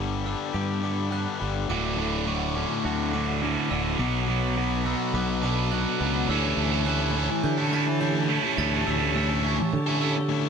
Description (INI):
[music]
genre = post-rock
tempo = 105 BPM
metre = 4/4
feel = straight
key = unclear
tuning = A4 = 440 Hz
[part]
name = rich studio string section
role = sustained chords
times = 0.0-10.5 s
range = A3 to A5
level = -36 LUFS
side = left 1 dB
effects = none
[part]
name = glockenspiel with hard plastic mallets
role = arpeggios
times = 0.0-10.5 s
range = C#6 to A6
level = -36 LUFS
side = right 4 dB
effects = analog delay
[part]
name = twangy electric guitar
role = arpeggios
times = 0.0-6.3 s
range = D2 to B4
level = -35 LUFS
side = left 2 dB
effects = analog delay
[part]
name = tight distorted guitar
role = riff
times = 0.0-10.5 s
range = D2 to A4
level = -29 LUFS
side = left 12 dB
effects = distortion
[part]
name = growling fingered electric bass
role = bass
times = 0.0-10.5 s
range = D1 to D3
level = -28 LUFS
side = right 1 dB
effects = overdrive
[part]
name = cranked stack guitar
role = riff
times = 1.7-10.2 s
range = D2 to A4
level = -28 LUFS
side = right 15 dB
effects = overdrive, phaser
[sound]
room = light reverb, small room ambience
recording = none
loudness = -23 LUFS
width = side -6 dB against mid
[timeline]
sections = 0.0-6.3 A section; 6.3-10.5 B section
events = build-up 0.0-6.3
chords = 0.0 Gmaj7; 1.7 Dmaj7; 4.0 Bm7; 6.3 A7/D